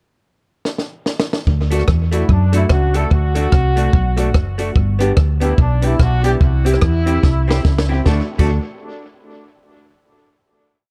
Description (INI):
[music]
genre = ska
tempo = 146 BPM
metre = 4/4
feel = swing 59% on 8ths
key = D mixolydian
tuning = A4 = 440 Hz
[part]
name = compact cocktail drum kit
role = drums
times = 0.7-8.5 s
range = crash cymbal, hi-hat, kick drum, rim click, snare drum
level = -19 LUFS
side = equal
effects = none
[part]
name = hollow-body short-scale fingered electric bass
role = bass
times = 1.5-8.6 s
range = F#1 to F#2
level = -19 LUFS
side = equal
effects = none
[part]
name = archtop guitar, miked and amplified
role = accompaniment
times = 1.7-8.5 s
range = A3 to G4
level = -26 LUFS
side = equal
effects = none
[part]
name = dark upright piano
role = stabs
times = 1.7-8.5 s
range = A3 to G4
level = -27 LUFS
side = equal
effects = tape echo
[part]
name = warm horn section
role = melody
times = 2.1-8.6 s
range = D4 to A4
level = -26 LUFS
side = equal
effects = tape echo
[sound]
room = little or no reverb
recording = dark, warm production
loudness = -16 LUFS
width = mono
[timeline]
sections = 0.0-1.5 pickup bar; 1.5-8.1 head; 8.1-9.7 final chord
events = drum fill 0.7-1.5, 7.2-8.1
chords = 0.0 N.C.; 1.5 D; 4.8 G; 6.4 C; 8.1 D